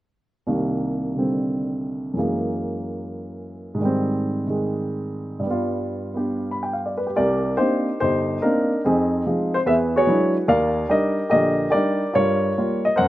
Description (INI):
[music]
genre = solo jazz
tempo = 144 BPM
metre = 4/4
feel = swing 66% on 8ths, rubato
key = C minor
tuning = A4 = 440 Hz
[part]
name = warm baby grand piano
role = solo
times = 0.5-13.1 s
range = G1 to B5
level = -20 LUFS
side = equal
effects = none
[sound]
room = little or no reverb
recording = recorded outdoors, with no room sound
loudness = -20 LUFS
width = side -15 dB against mid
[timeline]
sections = 0.5-7.2 A section; 7.2-13.1 B section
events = none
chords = 0.5 Cm7; 2.2 F#9; 3.8 Abmaj7; 5.4 G7; 7.2 Cm9; 8.8 Fm7; 9.7 E9; 10.5 Ebmaj7; 12.1 Gm7b5